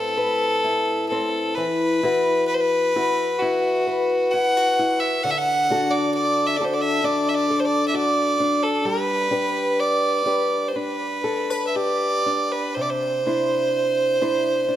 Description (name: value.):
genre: celtic folk, Celtic slow air.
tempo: 59-67 BPM.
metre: 4/4.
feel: rubato.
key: unclear.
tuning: A4 = 439 Hz.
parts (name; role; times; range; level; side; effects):
clear fiddle; melody; 0.0-14.8 s; F#4 to F#5; -21 LUFS; right 1 dB; none.
fingerpicked old ladder-braced acoustic guitar; accompaniment; 0.0-14.8 s; A2 to C5; -23 LUFS; left 2 dB; none.
room: moderate scoring stage reverb, RT60 1.9 s.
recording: none.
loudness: -19 LUFS.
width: side -12 dB against mid.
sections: 0.0-14.8 A section.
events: none.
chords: 0.0 Amadd9; 1.5 Esus2; 5.2 D; 8.8 G; 12.7 Cadd9.